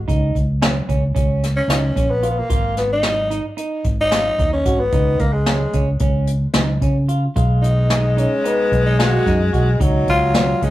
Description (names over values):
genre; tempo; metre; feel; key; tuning
progressive instrumental, band music in an uneven meter; 222 BPM (eighths); 9/8; straight; unclear; A4 = 440 Hz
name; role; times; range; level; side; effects
fingered electric bass; bass; 0.0-10.7 s; G#1 to C#3; -19 LUFS; equal; none
semi-hollow electric guitar; arpeggios; 0.1-10.7 s; C#4 to F#4; -26 LUFS; right 3 dB; none
jazz brush drum kit; drums; 0.1-10.7 s; hi-hat, kick drum, snare drum; -21 LUFS; equal; none
growling tenor saxophone; melody; 1.6-10.7 s; G#3 to F#4; -20 LUFS; left 1 dB; none
clear alto saxophone; second line; 7.4-10.7 s; F#3 to G#3; -22 LUFS; left 3 dB; none
room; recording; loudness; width
wet studio ambience, RT60 0.5 s; rough rehearsal-room recording; -15 LUFS; side -15 dB against mid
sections
0.0-10.7 A section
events
tenor saxophone solo 0.0-10.7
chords
0.1 A#madd11; 2.5 G#5; 4.9 C#5; 7.4 B; 9.8 C#sus4